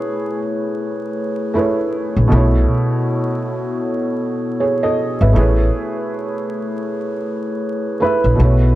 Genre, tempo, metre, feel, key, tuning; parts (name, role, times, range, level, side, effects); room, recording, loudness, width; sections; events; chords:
lo-fi hip hop; 79 BPM; 4/4; swing 60% on 16ths; A4 = 440 Hz
dark upright piano; melody; 0.0-0.4, 8.0-8.8 s; G#4 to B4; -21 LUFS; right 1 dB; low-pass filter
felt-muted upright piano; accompaniment; 0.0-8.8 s; B2 to E5; -20 LUFS; right 2 dB; cassette tape, low-pass filter
glass harmonica; sustained chords; 0.0-8.8 s; A3 to C#5; -23 LUFS; left 1 dB; low-pass filter
upright bass; bass; 2.2-8.7 s; G#1 to B1; -13 LUFS; equal
light reverb; dark, warm production, vinyl crackle; -16 LUFS; side -15 dB against mid
0.0-8.8 A section
0.0 Amaj9; 2.3 B9sus4; 5.4 Amaj9